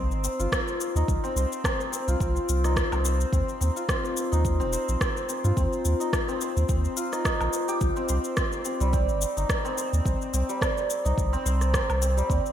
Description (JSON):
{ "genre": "organic downtempo", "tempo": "107 BPM", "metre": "4/4", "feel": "swing 55% on 16ths", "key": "C minor", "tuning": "A4 = 438 Hz", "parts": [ { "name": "santur", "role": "arpeggios", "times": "0.0-12.5 s", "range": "G3 to C5", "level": "-28 LUFS", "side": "left 1 dB", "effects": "ping-pong delay" }, { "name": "warm sub bass", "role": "bass", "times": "0.0-12.4 s", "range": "Eb1 to G2", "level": "-25 LUFS", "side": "equal", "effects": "sidechain pumping" }, { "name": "electronic shaker, rim click and woodblock", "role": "drums", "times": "0.1-12.5 s", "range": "none", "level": "-31 LUFS", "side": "equal", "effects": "studio reverb, gated reverb" }, { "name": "electronic kick drum", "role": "drums", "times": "0.5-12.4 s", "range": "none", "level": "-28 LUFS", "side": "equal", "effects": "studio reverb" } ], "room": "moderate lush hall reverb, RT60 2.0 s", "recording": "bright 1980s-style digital production", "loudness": "-23 LUFS", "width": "side -10 dB against mid", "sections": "0.0-12.5 A section", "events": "none", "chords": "0.0 Cm; 3.3 N.C.; 7.8 Cm", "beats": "0.52 | 1.08 1.64 2.21 2.77 | 3.33 3.89 4.45 5.01 | 5.57 6.13 6.69 7.25 | 7.81 8.37 8.93 9.49 | 10.05 10.62 11.18 11.74 | 12.30" }